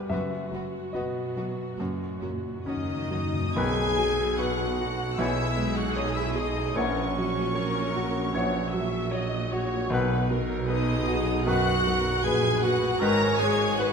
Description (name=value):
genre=classical, romantic movement for piano and orchestra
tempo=65-80 BPM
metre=4/4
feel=rubato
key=B major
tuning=A4 = 441 Hz
part: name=clear concert grand piano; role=melody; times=0.0-13.9 s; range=A#1 to G5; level=-30 LUFS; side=equal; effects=none
part: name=warm symphonic viola section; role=accompaniment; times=0.0-13.9 s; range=F#4 to E5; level=-35 LUFS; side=right 1 dB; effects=none
part: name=warm symphonic violin section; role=melody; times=0.1-13.9 s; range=A#4 to A#6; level=-34 LUFS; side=left 2 dB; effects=none
part: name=warm symphonic violin section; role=second line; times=0.1-13.9 s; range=B3 to A#5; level=-35 LUFS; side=left 2 dB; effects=none
part: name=rich symphonic double bass section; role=bass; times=0.1-13.9 s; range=F#1 to B1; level=-36 LUFS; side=right 3 dB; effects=none
part: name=warm studio cello section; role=bass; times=0.1-13.9 s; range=F#2 to D#3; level=-35 LUFS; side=right 2 dB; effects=none
part: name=timpani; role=percussion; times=0.1-11.0 s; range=F#2 to B2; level=-36 LUFS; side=left 2 dB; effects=none
part: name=mellow cor anglais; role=second line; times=2.7-13.9 s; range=C#4 to A#4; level=-36 LUFS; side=right 2 dB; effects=none
part: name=mellow French horn section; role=sustained chords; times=2.7-13.9 s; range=C#4 to A#4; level=-30 LUFS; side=left 2 dB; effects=none
part: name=clear clarinet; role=second line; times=3.6-13.3 s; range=B4 to C#5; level=-38 LUFS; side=left 3 dB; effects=none
part: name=mellow hollow flute section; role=second line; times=3.6-13.4 s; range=F#5 to B5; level=-38 LUFS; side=left 4 dB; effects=none
part: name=mellow bassoon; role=accompaniment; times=3.6-13.3 s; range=D#3 to E3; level=-38 LUFS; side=right 2 dB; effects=none
part: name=clear tuba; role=bass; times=3.6-13.9 s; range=G#1 to B1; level=-35 LUFS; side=right 5 dB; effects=none
room=wet concert hall reverb, RT60 2.4 s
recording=none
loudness=-24 LUFS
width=side -6 dB against mid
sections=0.0-3.6 A section; 3.6-13.9 B section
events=timpani fill 1.8-3.6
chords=0.1 B/F#; 1.8 F#; 3.6 B; 5.2 C#m7/B; 6.8 F#7/A#; 9.9 B; 13.0 G#m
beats=| 0.11 0.95 1.79 2.67 | 3.57 4.39 5.19 5.96 | 6.76 7.56 8.34 9.12 | 9.91 10.69 11.46 12.25 | 13.02 13.78